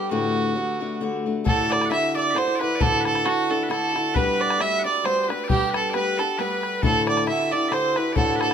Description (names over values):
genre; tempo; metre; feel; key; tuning
celtic folk, Celtic waltz; 134 BPM; 3/4; swing 55% on 8ths; D mixolydian; A4 = 438 Hz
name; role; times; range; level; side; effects
warm fiddle; melody; 0.0-8.5 s; F#4 to E5; -23 LUFS; right 4 dB; none
hammered dulcimer; second line; 0.0-8.5 s; F#4 to E5; -31 LUFS; right 4 dB; none
picked steel-string acoustic guitar; accompaniment; 0.0-8.5 s; D2 to G4; -26 LUFS; left 4 dB; none
loud bright bagpipes; second line; 1.5-8.5 s; F#4 to F#5; -31 LUFS; left 4 dB; none
bodhran; percussion; 1.5-8.5 s; none; -26 LUFS; left 3 dB; none
room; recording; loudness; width
moderate small room ambience, RT60 0.5 s; minimal, uncompressed stereo recording; -20 LUFS; side -8 dB against mid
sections
0.0-1.5 A section; 1.5-8.5 B section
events
none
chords
0.1 D; 1.5 Dadd9; 4.2 G; 6.8 Dadd9